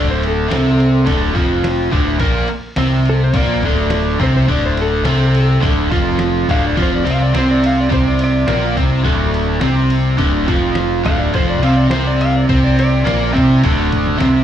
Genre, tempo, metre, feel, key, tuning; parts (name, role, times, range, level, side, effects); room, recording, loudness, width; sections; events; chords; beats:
garage rock duo or trio; 105 BPM; 4/4; straight; D minor; A4 = 440 Hz
clean lap steel guitar; melody; 0.0-13.3 s; A4 to F5; -22 LUFS; left 3 dB
overdriven electric guitar; riff; 0.0-14.4 s; D2 to C4; -16 LUFS; right 1 dB
growling picked electric bass; bass; 0.0-14.4 s; D1 to C2; -17 LUFS; equal; overdrive
lo-fi sampler-style drum kit; drums; 0.2-14.3 s; crash cymbal, kick drum, ride cymbal, snare drum; -22 LUFS; equal
light reverb; live gig heard through the venue's PA, club reverb; -12 LUFS; side -10 dB against mid
0.0-13.6 A section
electric slide guitar solo 0.0-13.6
0.0 Dm; 13.6 N.C.
0.50 1.07 1.64 | 2.20 2.77 3.34 3.91 | 4.48 5.05 5.62 6.19 | 6.76 7.34 7.91 8.48 | 9.05 9.63 10.20 10.77 | 11.35 11.92 12.49 13.06 | 13.64 14.21